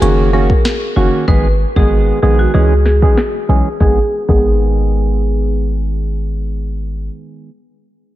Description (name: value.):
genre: dancehall.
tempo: 95 BPM.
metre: 4/4.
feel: straight.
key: G# minor.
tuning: A4 = 438 Hz.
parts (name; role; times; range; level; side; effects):
marimba with medium hard mallets; melody; 0.0-5.7 s; F#4 to B4; -18 LUFS; right 1 dB; analog delay.
percussive organ stab; accompaniment; 0.0-7.5 s; D#3 to G#4; -19 LUFS; right 4 dB; chorus.
warm 808-style bass; bass; 0.0-7.1 s; F#1 to C#2; -14 LUFS; left 1 dB; none.
afro-pop drum kit; drums; 0.0-4.5 s; crash cymbal, hi-hat, kick drum, snare drum; -15 LUFS; left 1 dB; none.
room: light reverb, digital ambience.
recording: low-pass filter.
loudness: -11 LUFS.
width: side -14 dB against mid.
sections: 0.0-3.8 A section; 3.8-6.3 B section.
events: filter sweep 0.0-3.8.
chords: 0.0 F#6; 1.3 G#m; 2.5 C#m; 3.8 G#m.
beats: 0.02 0.65 | 1.28 1.91 2.54 3.17 | 3.81 4.44 5.07 5.70.